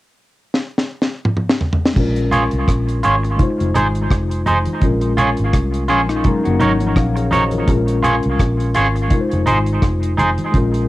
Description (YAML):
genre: lovers rock reggae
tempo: 84 BPM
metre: 4/4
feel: swing 56% on 16ths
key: Bb minor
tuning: A4 = 440 Hz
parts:
  - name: deep reggae drum kit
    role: drums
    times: 0.5-10.9 s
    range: crash cymbal, hi-hat, kick drum, rim click, snare drum, toms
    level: -18 LUFS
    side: equal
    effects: cassette tape
  - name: mellow tine electric piano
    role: accompaniment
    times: 1.9-10.9 s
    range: Gb3 to Db6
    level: -21 LUFS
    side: left 2 dB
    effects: medium stereo tremolo, cassette tape, analog delay
  - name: vintage muted fingered electric bass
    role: bass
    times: 2.0-10.9 s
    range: F1 to C2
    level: -20 LUFS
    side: equal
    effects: none
  - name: congas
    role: percussion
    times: 2.0-10.7 s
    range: none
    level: -25 LUFS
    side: right 2 dB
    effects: none
  - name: twangy electric guitar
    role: stabs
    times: 2.3-10.3 s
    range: Eb4 to Db5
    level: -19 LUFS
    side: right 2 dB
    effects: cassette tape, analog delay
  - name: mellow electric guitar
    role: arpeggios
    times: 5.9-7.6 s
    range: F3 to Gb4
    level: -22 LUFS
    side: left 5 dB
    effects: cassette tape, analog delay
room: light reverb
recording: home recording on cassette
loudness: -14 LUFS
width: side -17 dB against mid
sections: 0.0-2.0 A section; 2.0-10.9 B section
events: drum fill 0.5-2.0; tine electric piano fill 5.5-7.7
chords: 0.0 N.C.; 2.0 Bbm7; 3.4 Fm7; 4.8 Bbm7; 6.2 Gb6; 7.7 Bbm7; 9.1 Fm7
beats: 0.53 1.25 | 1.96 2.67 3.39 4.10 | 4.82 5.53 6.25 6.96 | 7.68 8.39 9.11 9.82 | 10.54